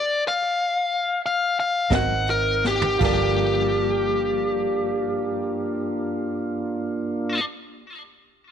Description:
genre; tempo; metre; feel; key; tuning
slow blues; 52-62 BPM (dotted quarters); 12/8; straight; G minor; A4 = 442 Hz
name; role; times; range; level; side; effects
biting overdriven guitar; melody; 0.0-7.4 s; G4 to Gb5; -23 LUFS; left 2 dB; none
clean electric guitar; accompaniment; 1.9-7.5 s; G2 to Eb4; -32 LUFS; left 11 dB; tremolo
clear upright piano; accompaniment; 1.9-7.4 s; F4 to Gb5; -30 LUFS; right 12 dB; none
mellow tonewheel organ; sustained chords; 1.9-7.4 s; Bb3 to Gb5; -29 LUFS; right 1 dB; slow rotary speaker
vintage muted fingered electric bass; bass; 1.9-7.4 s; G1 to Ab1; -28 LUFS; right 1 dB; none
jazz brush drum kit; drums; 1.9-3.2 s; crash cymbal, hi-hat, kick drum, snare drum, toms; -26 LUFS; equal; none
room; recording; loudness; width
light reverb, small room ambience; 1960s-style stereo with parts hard left and right; -21 LUFS; side -8 dB against mid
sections
0.0-3.0 A section; 3.0-7.6 B section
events
slowing down 0.0-3.0; stop 0.0-1.9; drum fill 2.6-3.0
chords
0.0 N.C.; 1.9 Ab7; 3.0 Gm7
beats
0.87 1.90 | 3.01 4.15 5.30 6.45

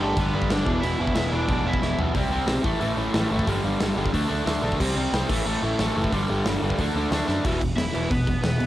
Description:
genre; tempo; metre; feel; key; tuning
punk rock; 181 BPM; 4/4; straight; E minor; A4 = 440 Hz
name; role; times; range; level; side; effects
overdriven electric guitar; melody; 0.0-2.0, 7.8-8.7 s; A3 to E5; -31 LUFS; right 1 dB; cassette tape, tape echo
crunchy overdriven guitar; riff; 0.0-8.7 s; E2 to D4; -24 LUFS; equal; none
picked electric bass; bass; 0.0-8.7 s; E1 to F#2; -29 LUFS; equal; none
big rock drum kit; drums; 0.2-8.7 s; crash cymbal, hi-hat, kick drum, snare drum, toms; -27 LUFS; equal; cassette tape
room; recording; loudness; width
light reverb; home recording on cassette; -21 LUFS; side -14 dB against mid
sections
0.0-2.2 A section; 2.2-7.4 B section; 7.4-8.7 C section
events
drum fill 1.8-2.2, 7.3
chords
0.0 G; 0.7 E5; 2.2 C5; 2.7 A5; 3.5 G5; 4.1 D5; 4.8 C5; 5.3 A5; 6.1 G5; 6.8 D; 7.4 E5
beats
0.17 0.50 | 0.83 1.16 1.49 1.82 | 2.15 2.49 2.82 3.15 | 3.48 3.81 4.14 4.47 | 4.80 5.13 5.46 5.79 | 6.12 6.46 6.79 7.12 | 7.45 7.78 8.11 8.44

